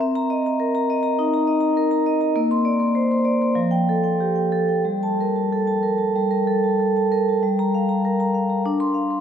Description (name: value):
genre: classical, contemporary piece for solo vibraphone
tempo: 91-104 BPM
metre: 4/4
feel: rubato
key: G minor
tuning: A4 = 440 Hz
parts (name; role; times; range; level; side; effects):
- vibraphone with medium hard mallets; solo; 0.0-9.2 s; F3 to C6; -18 LUFS; equal; none
room: wet cathedral reverb, RT60 5.4 s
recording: none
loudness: -18 LUFS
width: side -8 dB against mid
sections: 0.0-7.4 A section; 7.4-9.2 A section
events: none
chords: 0.0 Cm7; 2.4 Bbadd9; 3.6 Fadd9; 4.8 Gmadd9; 7.4 Gm7; 8.6 Dm7